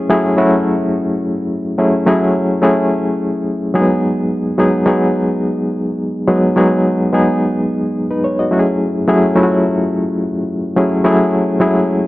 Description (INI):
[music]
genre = disco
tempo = 107 BPM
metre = 4/4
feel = straight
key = F# dorian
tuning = A4 = 437 Hz
[part]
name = barky reed electric piano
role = solo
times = 0.0-12.1 s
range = F#3 to D#5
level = -13 LUFS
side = equal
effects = overdrive, fast tremolo
[sound]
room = light reverb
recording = dark, warm production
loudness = -13 LUFS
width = side -18 dB against mid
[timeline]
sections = 0.0-12.1 A section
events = none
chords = 0.0 F#m9; 3.8 G#m7; 8.5 F#m9